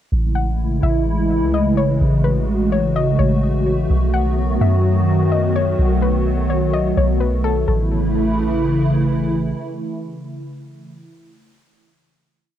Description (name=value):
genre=hip hop, atmospheric cloud-rap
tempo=127 BPM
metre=4/4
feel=half-time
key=A lydian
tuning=A4 = 440 Hz
part: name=hollow soft pad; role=sustained chords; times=0.2-10.9 s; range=C#3 to F#4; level=-19 LUFS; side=equal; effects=ensemble chorus, cassette tape
part: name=soft 808-style bass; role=bass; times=0.1-9.5 s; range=A1 to F#2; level=-20 LUFS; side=equal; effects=tube saturation
part: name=soft round pluck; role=melody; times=0.4-9.1 s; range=A4 to F#5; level=-25 LUFS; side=left 7 dB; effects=chorus, analog delay
room=moderate booth ambience, RT60 0.2 s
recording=home recording on cassette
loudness=-16 LUFS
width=side -11 dB against mid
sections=0.1-7.7 breakdown; 7.7-11.5 final chord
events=none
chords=0.1 Amaj7; 3.9 B7; 7.7 A